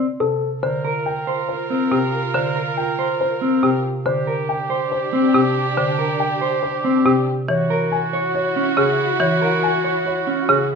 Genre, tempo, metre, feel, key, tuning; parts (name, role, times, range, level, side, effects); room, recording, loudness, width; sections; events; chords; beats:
classical, minimalist pattern music; 140 BPM; 4/4; straight; A4 = 440 Hz
dark baby grand piano; melody; 0.0-10.8 s; G4 to G#5; -23 LUFS; left 4 dB
mellow electric guitar; arpeggios; 0.0-10.6 s; C4 to C#5; -21 LUFS; left 1 dB
marimba with hard mallets; accompaniment; 0.2-10.8 s; C3 to E3; -23 LUFS; right 3 dB
clear oboe; second line; 0.6-10.7 s; F#4 to Bb4; -26 LUFS; right 6 dB
warm symphonic string section; sustained chords; 0.6-10.7 s; D4 to Bb4; -27 LUFS; left 1 dB
wet large studio reverb, RT60 1.2 s; nothing above 10.4 kHz; -17 LUFS; side -5 dB against mid
0.6-10.8 A section
0.0 Am; 0.6 Gm7; 4.1 Bb6; 7.5 F#7
0.20 | 0.63 1.06 1.49 1.92 | 2.34 2.77 3.20 3.63 | 4.06 4.49 4.92 5.34 | 5.77 6.20 6.63 7.06 | 7.49 7.92 8.34 8.77 | 9.20 9.63 10.06 10.49